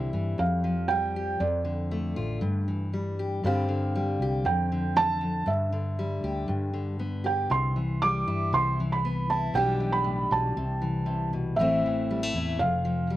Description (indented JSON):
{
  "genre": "acoustic folk duo or small band",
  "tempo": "118 BPM",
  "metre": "4/4",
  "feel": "straight",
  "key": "C major",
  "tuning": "A4 = 440 Hz",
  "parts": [
    { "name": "felt-muted upright piano", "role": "melody", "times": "0.0-13.1 s", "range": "D5 to D6", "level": "-28 LUFS", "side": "right 3 dB", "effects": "none" },
    { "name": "fingerpicked steel-string acoustic guitar", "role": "accompaniment", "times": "0.0-13.2 s", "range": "E2 to G4", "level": "-30 LUFS", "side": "left 2 dB", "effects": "none" },
    { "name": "fretless electric bass", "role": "bass", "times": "0.0-13.2 s", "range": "F1 to G2", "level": "-30 LUFS", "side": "equal", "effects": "none" }
  ],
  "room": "little or no reverb",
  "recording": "recorded outdoors, with no room sound",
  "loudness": "-25 LUFS",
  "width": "side -14 dB against mid",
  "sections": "0.0-13.2 A section",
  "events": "none",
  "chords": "0.4 Fsus2; 1.4 Dm/F; 2.4 Em7/G; 3.4 Gsus4; 4.5 Dmadd9/F; 5.5 G5; 6.5 G; 7.5 Cadd9; 8.5 Cmaj7; 9.5 Em7/B; 10.6 C6; 11.6 Am; 12.6 N.C."
}